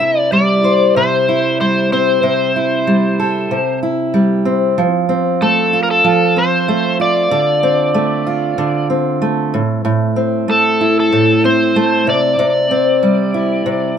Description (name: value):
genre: pop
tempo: 94 BPM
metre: 4/4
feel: swing 55% on 16ths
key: unclear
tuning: A4 = 441 Hz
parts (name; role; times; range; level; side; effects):
- overdriven slide guitar; melody; 0.0-13.9 s; A4 to E5; -15 LUFS; left 1 dB; none
- fingerpicked steel-string acoustic guitar; accompaniment; 0.0-14.0 s; A2 to C5; -14 LUFS; equal; none
room: light reverb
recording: minimal, uncompressed stereo recording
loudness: -12 LUFS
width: side -8 dB against mid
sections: 0.0-4.8 A section; 4.8-14.0 B section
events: none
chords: 0.0 C; 2.2 Am7/C; 3.5 C; 4.8 F; 7.3 Dm7; 9.5 Am; 12.1 C